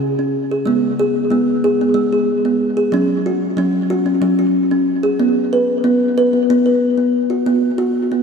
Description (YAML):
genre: world meditative, meditative tuned percussion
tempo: 185 BPM (eighths)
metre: 7/8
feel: straight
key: unclear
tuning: A4 = 438 Hz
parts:
  - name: kalimba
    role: solo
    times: 0.0-8.2 s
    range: C#3 to B4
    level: -14 LUFS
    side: equal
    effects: tape echo
room: wet lush hall reverb, RT60 3.0 s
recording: dreamy mix soaked in reverb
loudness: -14 LUFS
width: side -6 dB against mid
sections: 0.0-8.2 A section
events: none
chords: 0.0 C#5; 0.7 G#m; 2.9 F#5; 5.2 B5